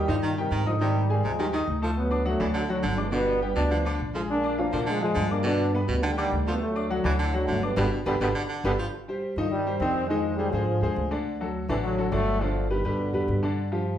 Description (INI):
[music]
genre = latin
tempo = 207 BPM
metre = 4/4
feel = straight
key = C harmonic minor from 8.9 s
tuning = A4 = 440 Hz
[part]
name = warm trombone section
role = melody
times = 0.0-13.4 s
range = A2 to D4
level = -28 LUFS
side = equal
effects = plate reverb
[part]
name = clear baby grand piano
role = accompaniment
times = 0.0-14.0 s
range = D3 to Eb6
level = -29 LUFS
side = left 2 dB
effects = none
[part]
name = upright bass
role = bass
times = 0.0-14.0 s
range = G1 to Bb2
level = -29 LUFS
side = equal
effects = none
[part]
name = clear baritone saxophone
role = second line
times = 0.1-8.9 s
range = B2 to F3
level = -31 LUFS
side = right 2 dB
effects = none
[sound]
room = wet large studio reverb, RT60 0.8 s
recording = heard from further back in the room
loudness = -24 LUFS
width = side -10 dB against mid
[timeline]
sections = 0.0-8.9 A section; 8.9-14.0 B section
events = band accent 7.8-8.9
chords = 0.0 Eb; 0.8 Abmaj7; 2.0 D; 3.1 G7; 4.3 Bb7; 5.5 G; 6.6 D; 7.8 G; 8.9 Cm; 10.1 Fm7; 11.3 D; 12.4 G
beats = 0.23 0.52 | 0.81 1.10 1.39 1.68 | 1.97 2.26 2.55 2.84 | 3.13 3.42 3.71 4.00 | 4.29 4.58 4.87 5.16 | 5.45 5.74 6.03 6.32 | 6.61 6.90 7.19 7.48 | 7.77 8.06 8.35 8.64 | 8.93 9.22 9.51 9.80 | 10.09 10.38 10.67 10.96 | 11.25 11.54 11.83 12.12 | 12.41 12.70 12.99 13.28 | 13.57 13.86